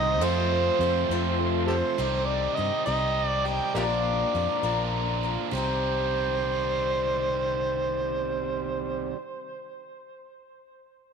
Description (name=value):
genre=rock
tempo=68 BPM (dotted quarters)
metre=6/8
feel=straight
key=C dorian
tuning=A4 = 440 Hz
part: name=overdriven harmonica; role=melody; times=0.0-9.1 s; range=G4 to G5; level=-28 LUFS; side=equal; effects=tape echo
part: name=bright reed electric piano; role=accompaniment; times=0.0-2.0 s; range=C4 to C5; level=-35 LUFS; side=right 10 dB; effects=fast tremolo
part: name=picked swing-style acoustic guitar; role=accompaniment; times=0.0-9.2 s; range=Bb2 to Bb4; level=-33 LUFS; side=left 12 dB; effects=none
part: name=bright tonewheel organ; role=sustained chords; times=0.0-2.0 s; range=G4 to C6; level=-39 LUFS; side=left 1 dB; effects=none
part: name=biting overdriven guitar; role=riff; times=0.0-9.2 s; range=F2 to G4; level=-31 LUFS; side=right 11 dB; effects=none
part: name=fingered electric bass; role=bass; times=0.0-9.1 s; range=Bb1 to G2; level=-31 LUFS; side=left 1 dB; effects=none
room=moderate echo chamber reverb, RT60 2.4 s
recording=1960s-style stereo with parts hard left and right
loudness=-24 LUFS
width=side -6 dB against mid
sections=0.0-2.0 A section; 2.0-5.5 B section; 5.5-9.1 C section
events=none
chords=0.2 F; 2.0 Cm; 3.8 Bb; 5.5 Cm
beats=| 0.21 1.10 | 1.98 2.87 | 3.75 4.64 | 5.53 6.42 | 7.31 8.20